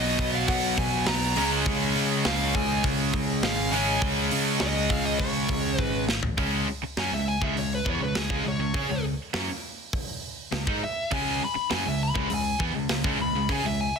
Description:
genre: hard rock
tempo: 102 BPM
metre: 4/4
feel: straight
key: unclear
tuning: A4 = 440 Hz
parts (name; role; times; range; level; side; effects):
- dark smooth lead guitar; melody; 0.0-14.0 s; Ab4 to Cb6; -30 LUFS; left 2 dB; overdrive, slapback echo, plate reverb
- brassy analog pad; sustained chords; 0.0-6.3 s; Cb4 to Eb5; -40 LUFS; left 1 dB; none
- cranked stack guitar; riff; 0.0-13.9 s; Cb3 to Ab4; -30 LUFS; right 14 dB; overdrive
- overdriven electric guitar; riff; 0.0-13.9 s; Cb3 to Ab4; -31 LUFS; left 15 dB; none
- overdriven electric guitar; riff; 0.0-6.1 s; Cb3 to Db4; -32 LUFS; right 2 dB; none
- picked electric bass; bass; 0.0-13.9 s; Ab1 to Db3; -32 LUFS; equal; none
- tight metal drum kit; drums; 0.2-13.6 s; hi-hat, kick drum, snare drum, toms; -29 LUFS; right 1 dB; none
room: light reverb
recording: dense, heavily limited modern master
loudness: -23 LUFS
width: side -6 dB against mid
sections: 0.0-6.4 A section; 6.4-14.0 B section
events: drum fill 5.8-6.4; lead electric guitar solo 6.4-14.0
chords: 0.0 Cb5; 1.4 Db5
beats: 0.49 1.07 | 1.66 2.25 2.84 3.43 | 4.02 4.61 5.20 5.79 | 6.38 6.97 7.56 8.15 | 8.74 9.34 9.93 10.52 | 11.12 11.71 12.30 12.90 | 13.49

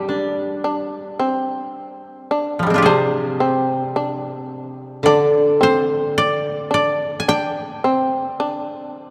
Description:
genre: japanese traditional, Japanese chamber music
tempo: 54 BPM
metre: 4/4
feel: rubato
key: unclear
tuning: A4 = 441 Hz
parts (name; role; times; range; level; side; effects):
- koto; melody; 0.0-9.1 s; F3 to Ab5; -23 LUFS; equal; none
- shamisen; second line; 0.0-9.1 s; C4 to D4; -24 LUFS; equal; none
- koto; accompaniment; 0.0-8.4 s; C3 to D4; -23 LUFS; equal; none
room: wet church reverb, RT60 3.7 s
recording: dark, warm production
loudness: -19 LUFS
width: mono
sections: 0.0-9.1 A section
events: none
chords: none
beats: 0.64 1.75 | 2.85 3.95 5.04 6.15 | 7.26 8.40

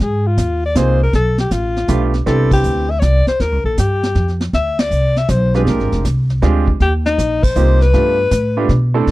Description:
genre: jazz, small-group swing and bop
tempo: 159 BPM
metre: 3/4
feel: swing 67% on 8ths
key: unclear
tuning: A4 = 439 Hz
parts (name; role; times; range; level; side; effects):
- breathy alto saxophone; melody; 0.0-8.7 s; Eb4 to E5; -18 LUFS; left 3 dB; none
- upright bass; bass; 0.0-9.1 s; F1 to B2; -15 LUFS; equal; none
- vintage brush drum kit; drums; 0.0-9.1 s; brushed snare drum, crash cymbal, hi-hat, kick drum, ride cymbal, snare drum; -19 LUFS; equal; none
- clear baby grand piano; accompaniment; 0.8-2.8, 5.5-9.1 s; Ab3 to A4; -19 LUFS; right 5 dB; none
room: studio reverb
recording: dry, close 1970s-style studio recording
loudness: -13 LUFS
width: side -18 dB against mid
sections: 0.0-9.1 A section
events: band accent 2.5, 4.7, 7.4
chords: 0.0 Ab69; 1.1 G9; 2.3 Cmaj9; 3.4 Eb9; 4.5 D7(no3); 5.7 Bb13; 6.8 Eb6; 7.9 G9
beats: 0.37 0.75 | 1.13 1.51 1.89 | 2.27 2.64 3.02 | 3.40 3.78 4.16 | 4.54 4.91 5.29 | 5.67 6.05 6.43 | 6.80 7.18 7.56 | 7.94 8.32 8.70 | 9.07

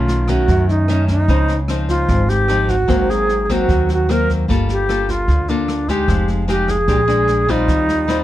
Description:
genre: bossa nova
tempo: 150 BPM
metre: 4/4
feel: straight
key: unclear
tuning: A4 = 440 Hz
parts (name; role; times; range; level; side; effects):
- bright reedy alto flute; melody; 0.0-8.2 s; D4 to Bb4; -18 LUFS; right 1 dB; none
- nylon-string guitar; accompaniment; 0.0-8.2 s; F#2 to A4; -21 LUFS; left 3 dB; none
- upright bass; bass; 0.0-8.2 s; F1 to F#2; -19 LUFS; equal; none
- jazz brush drum kit; drums; 0.1-8.2 s; kick drum, rim click, snare drum; -23 LUFS; equal; none
room: little or no reverb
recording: dark, warm production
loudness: -14 LUFS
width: side -14 dB against mid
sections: 0.0-8.2 A section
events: none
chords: 0.0 B9; 1.3 Dbmaj9; 2.9 Ab9; 4.5 Gm9; 6.1 Fm9; 6.9 Bb13; 7.7 Eb69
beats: 0.08 0.48 0.88 | 1.28 1.68 2.08 2.48 | 2.88 3.28 3.68 4.08 | 4.48 4.88 5.28 5.68 | 6.08 6.48 6.88 7.28 | 7.68 8.08

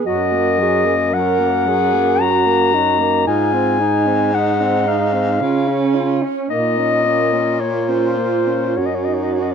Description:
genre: classical, lyrical piece for single-reed quartet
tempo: 56 BPM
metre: 3/4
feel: rubato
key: unclear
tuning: A4 = 437 Hz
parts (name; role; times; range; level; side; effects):
- warm alto saxophone; second line; 0.0-9.5 s; Db4 to Bb4; -21 LUFS; right 12 dB; none
- mellow tenor saxophone; accompaniment; 0.0-9.5 s; Gb3 to F4; -23 LUFS; left 2 dB; none
- mellow clarinet; melody; 0.1-9.5 s; C5 to Bb5; -18 LUFS; left 8 dB; none
- warm baritone saxophone; bass; 0.1-9.5 s; Gb2 to Db3; -20 LUFS; right 2 dB; none
room: moderate large studio reverb, RT60 0.9 s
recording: dark, warm production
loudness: -14 LUFS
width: side -7 dB against mid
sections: 0.0-9.5 A section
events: none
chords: 0.1 Ebm/Gb; 3.3 Ab; 5.4 Db; 6.5 Bbm; 8.8 Ebm7/Gb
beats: | 0.06 1.14 2.20 | 3.27 4.33 5.41 | 6.50 7.60 8.77

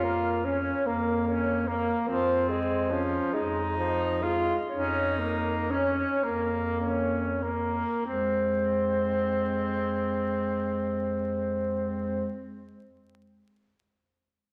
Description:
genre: classical, lyrical piece for single-reed quartet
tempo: 31-50 BPM (dotted quarters)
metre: 6/8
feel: rubato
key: F minor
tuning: A4 = 440 Hz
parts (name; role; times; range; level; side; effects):
- warm clarinet; melody; 0.0-12.3 s; Ab4 to Db5; -37 LUFS; equal; none
- clear alto saxophone; second line; 0.0-12.3 s; Ab3 to F4; -32 LUFS; equal; none
- clear tenor saxophone; accompaniment; 0.0-12.3 s; F3 to Db4; -32 LUFS; equal; none
- mellow bass clarinet; bass; 0.0-12.3 s; F2; -38 LUFS; equal; none
room: wet scoring stage reverb, RT60 2.0 s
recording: vinyl crackle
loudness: -28 LUFS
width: mono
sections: 0.0-8.1 A section; 8.1-11.7 B section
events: slowing down 0.9-8.1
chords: 0.0 Bbm/F; 2.1 Fm; 4.7 Bbm/F; 8.1 Fm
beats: 0.86 | 2.07 3.33 | 4.69 6.23 | 8.05 9.86

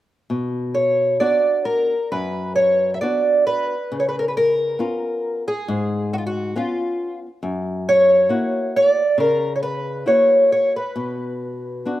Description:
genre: fado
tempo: 68 BPM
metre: 4/4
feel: rubato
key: B harmonic minor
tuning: A4 = 440 Hz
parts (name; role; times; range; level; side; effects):
- flamenco guitar; accompaniment; 0.3-12.0 s; F#2 to F#4; -26 LUFS; left 2 dB; slapback echo
- fingerpicked twelve-string acoustic guitar; melody; 0.7-12.0 s; E#4 to E5; -18 LUFS; equal; slapback echo
room: little or no reverb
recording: recorded outdoors, with no room sound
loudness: -17 LUFS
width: side -14 dB against mid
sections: 0.3-12.0 A section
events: none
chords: 0.3 Bm; 3.9 C#7; 7.4 F#7; 11.0 Bm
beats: | 0.30 1.21 2.11 3.02 | 3.91 4.79 5.67 6.55 | 7.43 8.30 9.18 10.07 | 10.96 11.86

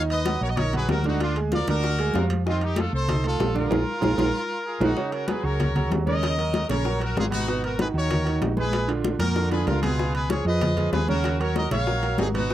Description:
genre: latin, salsa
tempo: 191 BPM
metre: 4/4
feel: straight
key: Eb minor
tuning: A4 = 444 Hz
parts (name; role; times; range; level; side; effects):
- brilliant trumpet section; melody; 0.0-12.5 s; C4 to F5; -28 LUFS; left 1 dB; none
- bright concert grand piano; accompaniment; 0.0-12.5 s; Bb2 to Eb6; -28 LUFS; right 6 dB; none
- hollow-body short-scale fingered electric bass; bass; 0.0-12.5 s; Ab1 to F2; -26 LUFS; equal; none
- congas; percussion; 0.1-12.5 s; none; -30 LUFS; left 3 dB; none
- timbales; percussion; 0.1-12.5 s; none; -31 LUFS; right 4 dB; none
- bongos; percussion; 0.3-12.5 s; none; -32 LUFS; left 7 dB; none
room: little or no reverb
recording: dry, close 1970s-style studio recording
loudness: -22 LUFS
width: side -12 dB against mid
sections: 0.0-5.0 A section; 5.0-12.5 B section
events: drum fill 3.7-5.0, 9.5-10.0; band accent 3.7-5.0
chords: 0.0 Ebm; 1.2 Bb7/D; 2.5 F7; 3.7 Bb5; 5.0 Dbsus24; 6.2 Ebm7; 7.5 Abm7; 8.7 Bb7b9; 10.0 Db9; 11.2 Ebm7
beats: 0.26 0.58 0.89 | 1.20 1.52 1.83 2.15 | 2.46 2.77 3.09 3.40 | 3.71 4.03 4.34 4.65 | 4.97 5.28 5.59 5.91 | 6.22 6.54 6.85 7.16 | 7.48 7.79 8.11 8.42 | 8.73 9.05 9.36 9.68 | 9.99 10.30 10.62 10.93 | 11.24 11.56 11.87 12.19 | 12.50

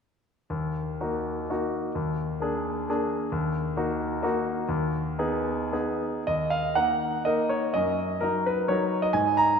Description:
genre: classical, romantic triple-time dance for piano with dotted rhythms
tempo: 106-140 BPM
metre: 3/4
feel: rubato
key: Eb minor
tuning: A4 = 440 Hz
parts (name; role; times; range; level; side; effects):
- bright concert grand piano; solo; 0.5-9.6 s; Eb2 to Bb5; -24 LUFS; equal; none
room: wet concert hall reverb, RT60 2.3 s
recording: minimal, uncompressed stereo recording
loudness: -25 LUFS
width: side -6 dB against mid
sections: 0.5-6.3 A section; 6.3-9.6 B section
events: none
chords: 0.5 Ebm; 2.0 Bb7/Eb; 3.3 Ebm; 4.7 Abm/Eb; 6.3 Ebm; 7.7 Ebm/Gb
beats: | 0.51 1.00 1.50 | 1.95 2.41 2.88 | 3.32 3.76 4.23 | 4.70 5.20 5.73 | 6.26 6.76 7.26 | 7.74 8.23 8.71 | 9.17

